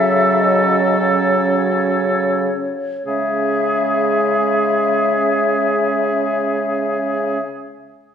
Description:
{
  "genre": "classical, slow romantic movement for wind quintet",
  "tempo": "26-35 BPM (dotted quarters)",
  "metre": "6/8",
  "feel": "rubato",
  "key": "C# minor",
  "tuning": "A4 = 442 Hz",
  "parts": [
    { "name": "mellow hollow silver concert flute", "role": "melody", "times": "0.0-7.4 s", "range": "C#5 to E5", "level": "-21 LUFS", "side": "left 4 dB", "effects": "none" },
    { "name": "clear oboe", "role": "second line", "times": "0.0-7.4 s", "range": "G#4 to A4", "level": "-20 LUFS", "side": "left 1 dB", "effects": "none" },
    { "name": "clear clarinet", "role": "accompaniment", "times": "0.0-7.4 s", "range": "C#4", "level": "-25 LUFS", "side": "right 5 dB", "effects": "none" },
    { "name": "warm French horn", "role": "accompaniment", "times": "0.0-7.4 s", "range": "F#3 to G#3", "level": "-23 LUFS", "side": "right 2 dB", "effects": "none" },
    { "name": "mellow bassoon", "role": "bass", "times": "0.0-7.4 s", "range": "C#3", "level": "-22 LUFS", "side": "right 2 dB", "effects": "none" }
  ],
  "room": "wet recital hall reverb, RT60 1.6 s",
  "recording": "heard from further back in the room",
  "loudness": "-15 LUFS",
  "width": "side -8 dB against mid",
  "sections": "0.0-3.1 A section; 3.1-7.1 B section",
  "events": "slowing down 0.0-3.1",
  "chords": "0.0 F#m/C#; 3.1 C#m"
}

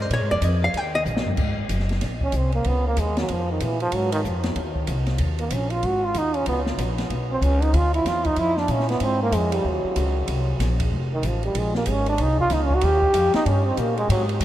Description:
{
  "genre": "jazz, small-group swing and bop",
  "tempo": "189 BPM",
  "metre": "4/4",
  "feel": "swing 62% on 8ths",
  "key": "Ab mixolydian",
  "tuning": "A4 = 440 Hz",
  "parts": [
    { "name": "archtop guitar, miked and amplified", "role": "melody", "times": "0.0-1.0 s", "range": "C5 to G5", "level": "-27 LUFS", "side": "left 1 dB", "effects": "none" },
    { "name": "upright bass", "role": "bass", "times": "0.0-14.4 s", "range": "F1 to Bb2", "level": "-23 LUFS", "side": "equal", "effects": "none" },
    { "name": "open jazz drum kit", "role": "drums", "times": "0.1-14.4 s", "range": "crash cymbal, hi-hat, kick drum, ride cymbal, snare drum, toms", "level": "-30 LUFS", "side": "equal", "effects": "none" },
    { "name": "clear trombone", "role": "second line", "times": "2.2-14.2 s", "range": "Eb3 to G4", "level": "-23 LUFS", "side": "right 1 dB", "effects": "none" }
  ],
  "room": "moderate huge ambient reverb, RT60 8.4 s",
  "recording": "in a vast, echoing space",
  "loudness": "-20 LUFS",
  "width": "side -13 dB against mid",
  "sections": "0.0-1.4 A section; 1.4-14.4 A section",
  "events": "hollow-body jazz guitar solo 0.0-1.4; drum fill 1.1-1.4; trombone solo 1.4-14.4",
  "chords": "0.1 Bb5; 0.8 Eb5; 1.4 Ab7; 2.7 Db; 3.9 Ab; 5.2 Eb5; 5.8 Ab5; 6.5 Bbm; 7.7 Dmadd9; 9.0 Ab5; 10.3 Bbsus2; 10.9 F; 11.6 Bbm7; 12.8 Eb"
}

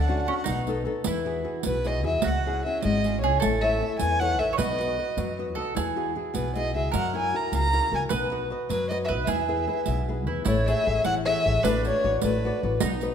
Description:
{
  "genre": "italian folk, Italian serenade",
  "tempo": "102 BPM (dotted quarters)",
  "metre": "6/8",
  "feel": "straight",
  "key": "E major",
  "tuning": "A4 = 438 Hz",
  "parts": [
    { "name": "dark violin", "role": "melody", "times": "0.0-12.8 s", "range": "B4 to A#5", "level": "-27 LUFS", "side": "equal", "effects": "none" },
    { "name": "mandolin", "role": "second line", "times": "0.0-13.1 s", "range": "C#4 to C#5", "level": "-32 LUFS", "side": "right 7 dB", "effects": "none" },
    { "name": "flamenco guitar", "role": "accompaniment", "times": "0.0-13.1 s", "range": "B2 to D#5", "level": "-30 LUFS", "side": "left 4 dB", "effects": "none" },
    { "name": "upright bass", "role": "bass", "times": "0.0-13.1 s", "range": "G#1 to F#2", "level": "-29 LUFS", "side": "equal", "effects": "none" },
    { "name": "riq", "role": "percussion", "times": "0.5-13.1 s", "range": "none", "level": "-33 LUFS", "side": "right 7 dB", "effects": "none" }
  ],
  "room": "moderate scoring stage reverb, RT60 2.1 s",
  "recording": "minimal, uncompressed stereo recording",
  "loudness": "-23 LUFS",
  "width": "side -8 dB against mid",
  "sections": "0.0-1.1 A section; 1.1-10.5 B section; 10.5-13.1 C section",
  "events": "none",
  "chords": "0.5 B7; 1.1 Eadd9; 2.2 C#m; 3.4 A; 4.6 B; 5.8 Eadd9; 6.9 F#7; 8.1 B; 9.3 E; 10.5 Amaj7; 11.6 D6/A"
}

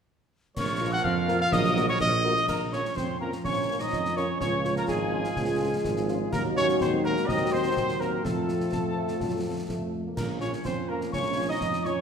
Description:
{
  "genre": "military-style march for wind band",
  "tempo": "125 BPM",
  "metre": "2/4",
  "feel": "straight",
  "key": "Bb minor",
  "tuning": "A4 = 440 Hz",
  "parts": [
    { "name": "warm cornet", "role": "melody", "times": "0.6-12.0 s", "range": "Ab4 to Gb5", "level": "-31 LUFS", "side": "equal", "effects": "none" },
    { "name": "warm woodwind section", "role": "second line", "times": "0.6-12.0 s", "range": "F4 to Eb5", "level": "-36 LUFS", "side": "equal", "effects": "none" },
    { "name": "wooden piccolo", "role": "second line", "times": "0.6-12.0 s", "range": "Ab5 to Gb6", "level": "-34 LUFS", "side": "left 3 dB", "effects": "none" },
    { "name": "mellow trombone section", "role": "sustained chords", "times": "0.6-11.9 s", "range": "F3 to F4", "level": "-34 LUFS", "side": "right 3 dB", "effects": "none" },
    { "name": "warm tuba", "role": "bass", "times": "0.6-12.0 s", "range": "Ab1 to F2", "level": "-31 LUFS", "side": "right 3 dB", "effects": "none" },
    { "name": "concert snare drum, clash cymbals and concert bass drum", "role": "drums", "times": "0.6-12.0 s", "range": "none", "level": "-36 LUFS", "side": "left 1 dB", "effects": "none" },
    { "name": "mellow French horn section", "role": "accompaniment", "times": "0.8-11.9 s", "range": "F3 to Bb4", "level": "-33 LUFS", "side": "left 6 dB", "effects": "none" },
    { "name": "clear euphonium", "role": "second line", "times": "2.5-12.0 s", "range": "Ab3 to Eb4", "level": "-33 LUFS", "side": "right 3 dB", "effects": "none" }
  ],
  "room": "wet recital hall reverb, RT60 1.5 s",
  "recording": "none",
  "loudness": "-24 LUFS",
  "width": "side -7 dB against mid",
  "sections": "0.6-2.5 A section; 2.5-12.0 B section",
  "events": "none",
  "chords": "0.6 Bb5; 1.5 Ebm/Bb; 2.5 Bbm; 4.4 Db; 6.3 Ebm; 7.3 Cdim/Eb; 8.2 F; 10.2 Bbm"
}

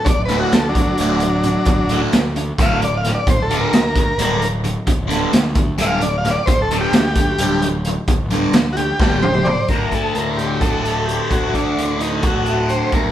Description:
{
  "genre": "psychedelic rock",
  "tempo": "262 BPM (eighths)",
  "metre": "7/8",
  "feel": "straight",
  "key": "D major",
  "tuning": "A4 = 442 Hz",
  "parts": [
    { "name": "overdriven combo organ", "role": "melody", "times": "0.0-13.1 s", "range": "F#3 to F5", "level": "-20 LUFS", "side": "equal", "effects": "none" },
    { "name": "fuzz guitar", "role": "riff", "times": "0.0-13.1 s", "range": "D2 to F#4", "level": "-21 LUFS", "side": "equal", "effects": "distortion, phaser" },
    { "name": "fuzz picked electric bass", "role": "bass", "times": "0.1-13.1 s", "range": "D1 to D2", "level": "-23 LUFS", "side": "equal", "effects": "overdrive" },
    { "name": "raw garage drum kit", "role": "drums", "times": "0.1-13.0 s", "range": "hi-hat, kick drum, snare drum, toms", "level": "-18 LUFS", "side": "equal", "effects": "none" }
  ],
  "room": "moderate large studio reverb, RT60 1.1 s",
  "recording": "band playing live in one room",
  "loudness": "-15 LUFS",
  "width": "side -11 dB against mid",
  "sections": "0.0-9.7 A section; 9.7-13.1 B section",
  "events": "transistor combo organ solo 0.0-9.7; drum fill 9.0-9.7",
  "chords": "0.0 D; 3.3 G5/D; 9.7 D"
}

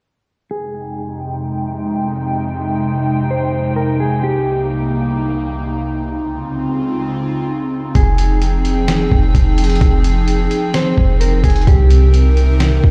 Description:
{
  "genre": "hip hop, atmospheric cloud-rap",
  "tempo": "129 BPM",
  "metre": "4/4",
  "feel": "half-time",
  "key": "F minor",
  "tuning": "A4 = 440 Hz",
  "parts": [
    { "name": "mellow electric guitar", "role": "melody", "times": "0.5-4.7, 8.0-12.1 s", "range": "G4 to C5", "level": "-26 LUFS", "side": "equal", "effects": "low-pass filter, delay" },
    { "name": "airy breathy pad", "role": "sustained chords", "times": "0.5-12.9 s", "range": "C2 to G5", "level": "-21 LUFS", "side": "equal", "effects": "chorus, low-pass filter" },
    { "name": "warm 808-style bass", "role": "bass", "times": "8.0-12.9 s", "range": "F1 to C2", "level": "-15 LUFS", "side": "equal", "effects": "none" },
    { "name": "lo-fi sampler-style drum kit", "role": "drums", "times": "8.0-12.9 s", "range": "hi-hat, kick drum, snare drum", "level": "-19 LUFS", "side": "equal", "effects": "none" }
  ],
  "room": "little or no reverb",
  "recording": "played on a big sound system in a bare room, stone room reverb",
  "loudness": "-16 LUFS",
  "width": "mono",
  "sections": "0.5-8.0 A section; 8.0-12.9 B section",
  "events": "filter sweep 0.5-8.0",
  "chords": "0.5 Fm7; 4.2 Cm7; 6.1 Dbmaj7; 8.0 Fm7; 11.7 Cm7"
}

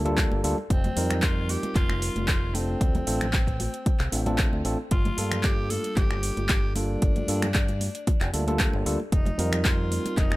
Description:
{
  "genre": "nu-disco, nu disco",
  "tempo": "114 BPM",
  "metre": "4/4",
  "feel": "straight",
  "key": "G minor",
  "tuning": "A4 = 440 Hz",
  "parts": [
    { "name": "raspy tenor saxophone", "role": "melody", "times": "0.0-10.4 s", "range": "Bb3 to A4", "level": "-34 LUFS", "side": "left 1 dB", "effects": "tape echo" },
    { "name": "tine electric piano", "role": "accompaniment", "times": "0.0-10.4 s", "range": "G3 to Bb4", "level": "-30 LUFS", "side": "equal", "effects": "none" },
    { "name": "fingered electric bass with an envelope filter", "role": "bass", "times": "0.0-10.4 s", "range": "F1 to G2", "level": "-29 LUFS", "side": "equal", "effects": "none" },
    { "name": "pop drum kit", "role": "drums", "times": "0.1-10.4 s", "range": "finger snaps, handclaps, hi-hat", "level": "-30 LUFS", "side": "equal", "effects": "overdrive" },
    { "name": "congas", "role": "percussion", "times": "0.1-10.4 s", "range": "none", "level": "-35 LUFS", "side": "equal", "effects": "none" },
    { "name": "electronic kick drum", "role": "drums", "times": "0.2-10.3 s", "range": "none", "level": "-24 LUFS", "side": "equal", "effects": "overdrive" }
  ],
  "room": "little or no reverb",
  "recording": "none",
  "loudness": "-23 LUFS",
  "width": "side -18 dB against mid",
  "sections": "0.0-10.4 A section",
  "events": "none",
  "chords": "0.0 Gm7; 0.7 F9sus4; 2.8 Dm7; 4.9 Gm7; 9.1 F9sus4"
}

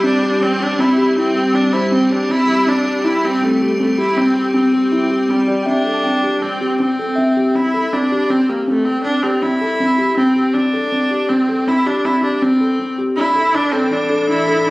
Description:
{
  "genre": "contemporary instrumental, chamber music in an uneven meter",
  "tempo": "160 BPM",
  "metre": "5/4",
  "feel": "straight",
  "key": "A minor",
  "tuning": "A4 = 440 Hz",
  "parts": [
    { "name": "rich viola", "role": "second line", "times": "0.0-14.7 s", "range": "G3 to E4", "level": "-17 LUFS", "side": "equal", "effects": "none" },
    { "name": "icy glass pad", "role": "sustained chords", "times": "0.0-5.6, 13.5-14.7 s", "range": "A2 to A4", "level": "-21 LUFS", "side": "equal", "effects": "chorus, built-in reverb" },
    { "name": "felt-muted upright piano", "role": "arpeggios", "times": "0.0-14.7 s", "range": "C4 to A4", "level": "-18 LUFS", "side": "left 1 dB", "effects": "none" },
    { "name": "worn celesta", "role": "texture", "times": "1.7-2.1, 5.5-7.5 s", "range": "C5 to A5", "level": "-24 LUFS", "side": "left 1 dB", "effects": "none" }
  ],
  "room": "moderate concert hall reverb, RT60 2.3 s",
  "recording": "recorded on a phone in the room, club reverb, compression",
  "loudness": "-14 LUFS",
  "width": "side -20 dB against mid",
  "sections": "0.0-5.7 A section; 5.7-14.7 B section",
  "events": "none",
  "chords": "0.0 Am7 (rootless); 5.7 Am7; 13.2 Dsus2/A"
}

